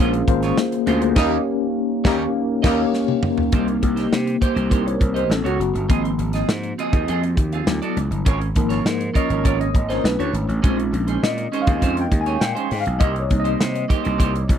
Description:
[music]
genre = polished 1980s jazz-funk pop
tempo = 101 BPM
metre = 4/4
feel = straight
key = unclear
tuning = A4 = 440 Hz
[part]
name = mellow tine electric piano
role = accompaniment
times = 0.0-14.6 s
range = F3 to Ab5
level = -22 LUFS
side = left 3 dB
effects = medium stereo tremolo, lush chorus
[part]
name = clean electric guitar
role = riff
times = 0.0-14.5 s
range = Ab3 to F5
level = -26 LUFS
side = right 7 dB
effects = lush chorus
[part]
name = gritty slap bass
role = bass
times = 0.0-14.6 s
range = F#1 to C3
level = -23 LUFS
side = equal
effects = overdrive
[part]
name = modern studio drum kit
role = drums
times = 0.1-14.6 s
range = crash cymbal, hi-hat, kick drum, snare drum, toms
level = -20 LUFS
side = equal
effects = none
[part]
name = warm horn section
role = second line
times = 1.2-2.8 s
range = G3 to Bb4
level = -27 LUFS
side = left 1 dB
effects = none
[sound]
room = little or no reverb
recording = dry, close 1970s-style studio recording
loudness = -18 LUFS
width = side -9 dB against mid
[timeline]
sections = 0.0-3.5 A section; 3.5-14.6 B section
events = band accent 1.2-3.5; drum fill 2.9-3.5; tine electric piano solo 3.5-14.6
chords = 0.0 Bbm9; 1.2 Eb7; 3.5 Cm7; 5.3 A6; 5.9 Ab6; 7.7 D6; 8.3 Db6/Ab; 10.0 Bm11; 10.6 Bbm11; 13.0 Cm7

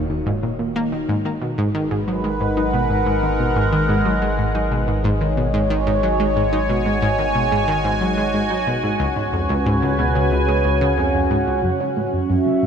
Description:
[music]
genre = ambient, sequencer-driven space music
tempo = 91 BPM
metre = 4/4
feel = straight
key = unclear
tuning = A4 = 440 Hz
[part]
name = sweeping resonant pad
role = sustained chords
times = 0.0-12.7 s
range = Db3 to Ab5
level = -20 LUFS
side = equal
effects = chorus, phaser, shimmer reverb
[part]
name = analog pluck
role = riff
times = 0.0-12.7 s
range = Db2 to Eb4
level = -21 LUFS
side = equal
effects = chorus, shimmer reverb, tape echo
[part]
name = round analog bass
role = bass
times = 0.0-12.7 s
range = Eb1 to Db2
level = -25 LUFS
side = equal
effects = none
[part]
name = mellow horn-like synth lead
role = melody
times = 11.0-12.7 s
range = E5 to Ab5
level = -27 LUFS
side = right 1 dB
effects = chorus, cassette tape, shimmer reverb, tape echo
[part]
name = bubbling stepped-filter texture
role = texture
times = 12.0-12.7 s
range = G#6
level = -57 LUFS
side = right 4 dB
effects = none
[sound]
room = wet lush hall reverb, RT60 2.8 s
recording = dreamy mix soaked in reverb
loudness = -17 LUFS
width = side -7 dB against mid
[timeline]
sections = 0.0-11.6 A section; 11.6-12.7 B section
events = none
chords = 0.0 Ebm7; 1.1 Abm7; 9.0 Db7; 11.6 F#m7

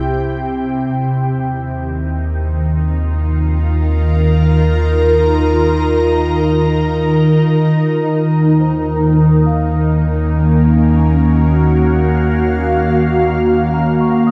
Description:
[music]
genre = ambient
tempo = free time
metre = none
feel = none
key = unclear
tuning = A4 = 440 Hz
[part]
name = ethereal airy pad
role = sustained chords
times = 0.0-14.3 s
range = C3 to Bb5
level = -15 LUFS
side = equal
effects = ensemble chorus, built-in reverb, phaser
[part]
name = round analog bass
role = bass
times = 0.0-14.3 s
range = C2 to Eb2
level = -20 LUFS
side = equal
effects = none
[part]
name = celesta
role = arpeggios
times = 8.6-14.3 s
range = C5 to Eb6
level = -33 LUFS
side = equal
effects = none
[sound]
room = wet cathedral reverb, RT60 5.5 s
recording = in a vast, echoing space, cassette tape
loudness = -14 LUFS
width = mono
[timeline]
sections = 0.0-7.7 A section; 7.7-14.3 B section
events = none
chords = 0.0 C; 0.9 Ebsus2; 7.7 Ebm7

